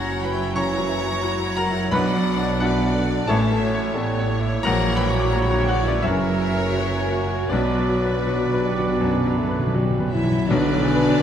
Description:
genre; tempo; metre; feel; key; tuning
classical, romantic movement for piano and orchestra; 78-91 BPM; 4/4; rubato; B minor; A4 = 441 Hz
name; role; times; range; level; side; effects
clear baby grand piano; melody; 0.0-11.2 s; A1 to D6; -24 LUFS; left 2 dB; none
warm symphonic violin section; melody; 0.0-11.2 s; A#4 to D5; -36 LUFS; left 3 dB; none
mellow silver concert flute; second line; 0.0-11.2 s; D5 to D6; -34 LUFS; equal; none
rich symphonic violin section; second line; 0.0-11.2 s; B4 to B5; -33 LUFS; left 2 dB; none
warm clarinet; second line; 0.0-11.2 s; A#3 to E4; -33 LUFS; left 1 dB; none
warm oboe; second line; 0.0-11.2 s; A#4 to D5; -32 LUFS; right 2 dB; none
rich symphonic viola section; accompaniment; 0.0-11.2 s; F#3 to F#4; -30 LUFS; right 1 dB; none
warm bassoon; accompaniment; 0.0-11.2 s; D3 to C#4; -32 LUFS; right 2 dB; none
rich symphonic cello section; bass; 0.0-11.2 s; F#2 to E3; -28 LUFS; right 2 dB; none
rich symphonic double bass section; bass; 0.0-11.2 s; F#1 to B1; -28 LUFS; right 3 dB; none
warm trombone section; sustained chords; 0.5-11.2 s; B2 to B3; -33 LUFS; right 2 dB; none
warm French horn section; sustained chords; 0.6-11.2 s; A#3 to F#4; -29 LUFS; left 3 dB; none
dark trumpet; stabs; 0.6-11.2 s; B4 to D5; -33 LUFS; right 2 dB; none
timpani; percussion; 6.0-11.2 s; F#2 to B2; -27 LUFS; equal; none
cymbal swell and tam-tam; percussion; 7.5-11.2 s; none; -38 LUFS; left 4 dB; none
clear tuba; bass; 10.5-11.2 s; B1; -28 LUFS; right 2 dB; none
room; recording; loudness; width
moderate scoring stage reverb, RT60 1.9 s; none; -19 LUFS; side -9 dB against mid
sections
0.0-10.5 A section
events
timpani fill 7.5-10.5; band accent 10.5-11.2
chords
0.0 F#7; 1.9 Bm; 3.3 A; 4.6 F#7/A#; 6.0 F#7; 7.5 Bm

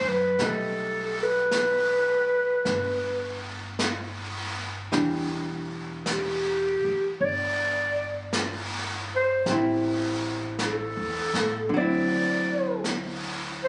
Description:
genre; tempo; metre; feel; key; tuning
jazz ballad; 53 BPM; 4/4; swing 68% on 8ths; unclear; A4 = 440 Hz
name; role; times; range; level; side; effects
growling clarinet; melody; 0.0-13.7 s; G4 to D5; -27 LUFS; equal; none
archtop guitar, miked and amplified; accompaniment; 0.0-13.7 s; D3 to E4; -31 LUFS; equal; none
upright bass; bass; 0.0-13.7 s; E1 to A2; -40 LUFS; equal; none
vintage brush drum kit; drums; 0.4-13.7 s; brushed snare drum, hi-hat, snare drum; -34 LUFS; equal; none
room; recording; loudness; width
light reverb; recorded on a phone in the room, club reverb, nothing above 10.6 kHz; -27 LUFS; mono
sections
0.0-13.7 A section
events
none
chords
0.4 Baug7; 4.9 Em7; 9.5 Am7; 11.7 D9

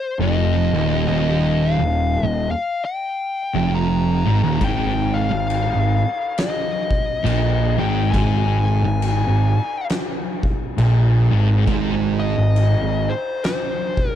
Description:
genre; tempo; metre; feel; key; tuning
stoner and doom metal; 68 BPM; 4/4; swing 60% on 8ths; unclear; A4 = 439 Hz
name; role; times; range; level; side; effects
fuzz lead guitar; melody; 0.0-14.2 s; C5 to Bb5; -24 LUFS; left 4 dB; distortion, tape echo
thick fuzz guitar; riff; 0.2-13.1 s; Eb2 to Bb2; -23 LUFS; left 7 dB; distortion
thick fuzz guitar; riff; 0.2-13.1 s; Eb2 to Bb2; -20 LUFS; right 5 dB; distortion
fuzz picked electric bass; bass; 0.2-13.1 s; Eb1 to Bb1; -23 LUFS; equal; overdrive
oversized low-tuned drum kit; drums; 4.6-14.1 s; crash cymbal, kick drum, snare drum; -25 LUFS; left 1 dB; none
room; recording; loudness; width
little or no reverb; none; -17 LUFS; side -10 dB against mid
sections
0.0-14.2 A section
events
none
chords
0.0 Eb5; 4.6 Ab5

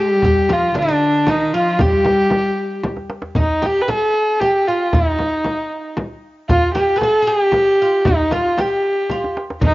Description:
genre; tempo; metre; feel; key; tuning
Persian modal ensemble; 115 BPM; 3/4; straight; unclear; A4 = 441 Hz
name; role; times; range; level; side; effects
warm kamancheh; melody; 0.0-9.7 s; D4 to B4; -16 LUFS; equal; cassette tape, plate reverb, analog delay
oud; second line; 0.0-9.7 s; D4 to B4; -26 LUFS; right 2 dB; plate reverb
warm cello; second line; 0.0-2.8, 9.6-9.7 s; D3 to G3; -22 LUFS; left 2 dB; none
frame drum; percussion; 0.2-9.7 s; none; -22 LUFS; left 1 dB; none
tombak; percussion; 0.2-9.7 s; none; -21 LUFS; right 1 dB; none
room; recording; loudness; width
moderate studio reverb, RT60 0.5 s; home recording on cassette, nothing above 7.5 kHz; -14 LUFS; side -18 dB against mid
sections
0.0-3.4 A section; 3.4-9.7 B section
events
drum fill 2.8-3.4, 9.1-9.6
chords
none

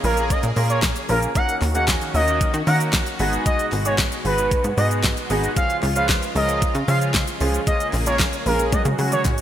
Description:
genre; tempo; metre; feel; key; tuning
dance-pop; 114 BPM; 4/4; straight; Eb minor; A4 = 439 Hz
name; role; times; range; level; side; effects
expressive portamento lead; melody; 0.0-9.2 s; Bb4 to Gb5; -24 LUFS; equal; chorus, sidechain pumping
warm concert grand piano; accompaniment; 0.0-9.3 s; F3 to Db5; -26 LUFS; right 1 dB; analog chorus, sidechain pumping
filtered supersaw swell; sustained chords; 0.0-9.4 s; Cb3 to Ab4; -30 LUFS; equal; analog chorus, sidechain pumping
plucky analog bass; bass; 0.0-9.4 s; Ab1 to Eb3; -22 LUFS; equal; sidechain pumping
pop drum kit; drums; 0.0-9.4 s; handclaps, hi-hat, kick drum, shaker, snare drum, toms; -23 LUFS; equal; none
group handclap; percussion; 0.8-9.4 s; none; -37 LUFS; left 3 dB; none
room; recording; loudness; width
moderate lush hall reverb, RT60 2.3 s; bright 1980s-style digital production; -18 LUFS; side -11 dB against mid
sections
0.0-9.4 A section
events
drum fill 8.7-9.4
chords
0.0 Bbm7; 1.4 Ebm7; 3.2 Abm7; 5.6 Db; 7.7 Bbm7; 8.7 Dbsus4

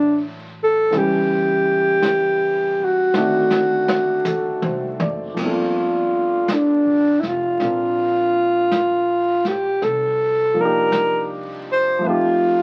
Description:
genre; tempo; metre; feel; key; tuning
jazz ballad; 54 BPM; 4/4; swing 69% on 8ths; G minor from 5.4 s; A4 = 440 Hz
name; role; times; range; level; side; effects
breathy alto saxophone; melody; 0.0-12.6 s; D4 to C5; -20 LUFS; equal; none
warm grand piano; accompaniment; 0.0-12.6 s; Eb3 to D5; -28 LUFS; equal; none
upright bass; bass; 0.0-12.6 s; F1 to F2; -38 LUFS; equal; none
vintage brush drum kit; drums; 0.9-12.6 s; brushed snare drum, crash cymbal, hi-hat, kick drum, snare drum, toms; -31 LUFS; equal; none
room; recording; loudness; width
light reverb; very old 78 rpm record, vinyl crackle; -19 LUFS; mono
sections
0.0-5.4 A section; 5.4-12.6 B section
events
drum fill 3.1-5.4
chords
0.0 Dmaj7; 0.9 C#m7b5; 3.1 D7b9; 5.4 Gm11; 9.8 Cm11; 12.0 F7

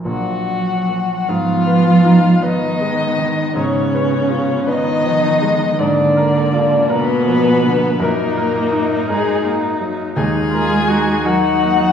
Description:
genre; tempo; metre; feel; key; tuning
classical, slow romantic movement for piano quintet; 54 BPM (dotted quarters); 6/8; rubato; Eb minor; A4 = 440 Hz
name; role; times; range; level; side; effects
clear grand piano; accompaniment; 0.0-11.9 s; Bb1 to Cb5; -21 LUFS; equal; none
muted violin; melody; 0.1-11.9 s; Ab4 to Ab5; -19 LUFS; left 4 dB; none
muted cello; second line; 0.1-11.9 s; Ab2 to Ab3; -18 LUFS; right 2 dB; none
muted violin; second line; 0.1-11.9 s; Ab3 to Ab4; -22 LUFS; left 1 dB; none
muted viola; accompaniment; 0.9-11.9 s; Bb3 to Gb4; -23 LUFS; left 1 dB; none
room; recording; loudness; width
wet recital hall reverb, RT60 1.5 s; heard from further back in the room; -13 LUFS; side -8 dB against mid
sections
0.0-1.3 A section; 1.3-11.9 B section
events
none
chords
0.1 Bb; 1.3 Abm; 3.5 Fdim/Ab; 5.8 Bb7/Ab; 8.0 Ebm/Gb; 10.2 Ebm

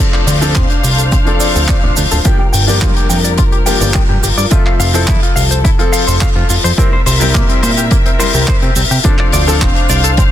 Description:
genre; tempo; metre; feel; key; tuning
nu-disco, nu disco; 106 BPM; 4/4; straight; unclear; A4 = 440 Hz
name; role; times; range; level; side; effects
clear grand piano; accompaniment; 0.0-9.6 s; F3 to E5; -19 LUFS; left 3 dB; sidechain pumping, low-pass filter, tape echo
dark studio string section; sustained chords; 0.0-10.3 s; F3 to F5; -21 LUFS; left 2 dB; sidechain pumping
direct-recorded clean electric guitar; riff; 0.0-10.2 s; Bb3 to G5; -20 LUFS; left 4 dB; wide subtle chorus, low-pass filter, tape echo
tight funk drum kit; drums; 0.0-10.3 s; cabasa, handclaps, hi-hat; -17 LUFS; left 1 dB; none
fat analog bass; bass; 0.3-10.2 s; D1 to C3; -14 LUFS; equal; none
cabasa; percussion; 0.3-10.3 s; none; -26 LUFS; right 11 dB; none
electronic kick drum; drums; 0.6-10.3 s; none; -13 LUFS; equal; none
room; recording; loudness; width
small room ambience; dense, heavily limited modern master; -9 LUFS; side -12 dB against mid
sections
0.0-10.3 A section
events
filter sweep on clean electric guitar 0.0-10.3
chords
0.0 Dm7; 2.3 Gm7; 4.5 Fmaj7; 6.8 C7; 9.0 Dm7

